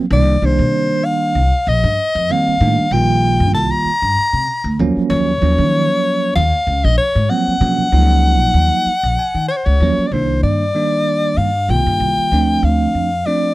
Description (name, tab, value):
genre	electric jazz fusion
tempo	96 BPM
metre	4/4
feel	swing 55% on 16ths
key	C dorian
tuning	A4 = 444 Hz
part	bell-like tine electric piano	accompaniment	0.0-13.5 s	Eb3 to Ab5	-18 LUFS	right 4 dB	fast stereo tremolo
part	warm soprano saxophone	melody	0.1-13.5 s	C5 to Bb5	-17 LUFS	left 2 dB	none
part	upright bass	bass	0.1-13.2 s	Bb1 to Eb3	-16 LUFS	equal	none
room	little or no reverb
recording	dry, close 1970s-style studio recording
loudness	-13 LUFS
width	side -17 dB against mid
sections	0.0-10.1 A section; 10.1-13.5 B section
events	tine electric piano fill 8.9-10.1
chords	0.1 Cm9; 4.8 Ebm9; 10.1 Cm9; 12.3 Bbmaj9/D (rootless)